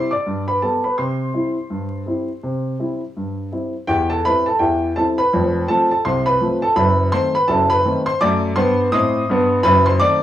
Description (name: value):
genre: ragtime piano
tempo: 83 BPM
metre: 2/4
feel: swing 60% on 16ths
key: C major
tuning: A4 = 442 Hz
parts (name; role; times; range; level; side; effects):
- warm baby grand piano; solo; 0.0-10.2 s; F1 to D#6; -16 LUFS; equal; cassette tape
room: moderate small room ambience, RT60 0.5 s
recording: home recording on cassette, vinyl crackle, small room ambience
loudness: -16 LUFS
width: side -12 dB against mid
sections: 0.0-3.9 A section; 3.9-10.2 A section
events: none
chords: 0.3 G; 1.0 C; 3.9 C/E; 5.3 F; 6.8 F#dim7